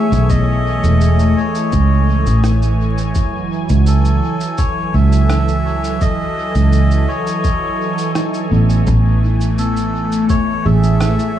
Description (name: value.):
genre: ambient dub.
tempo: 84 BPM.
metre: 4/4.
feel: straight.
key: F# dorian.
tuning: A4 = 440 Hz.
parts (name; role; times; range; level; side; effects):
melodica; melody; 0.0-11.4 s; A4 to E5; -23 LUFS; left 1 dB; analog delay.
warm analog pad; sustained chords; 0.0-11.4 s; E3 to G#5; -20 LUFS; right 1 dB; chorus.
handpan; arpeggios; 0.0-2.9, 8.2-11.4 s; B3 to G#4; -26 LUFS; right 1 dB; analog delay.
fingered electric bass; bass; 0.1-11.2 s; E1 to C#2; -13 LUFS; right 1 dB; none.
electronic shaker and rim click; drums; 0.1-11.3 s; none; -29 LUFS; equal; dub echo.
electronic kick drum; drums; 0.3-10.4 s; none; -18 LUFS; equal; none.
backwards swelling texture; texture; 9.6-11.4 s; A3; -23 LUFS; left 6 dB; built-in reverb.
room: light reverb, digital ambience.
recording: echo-heavy mix, vinyl crackle, small room ambience.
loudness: -13 LUFS.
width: side -11 dB against mid.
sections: 0.0-11.4 A section.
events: none.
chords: 0.0 Amaj7; 3.2 F#m9; 8.9 Amaj7.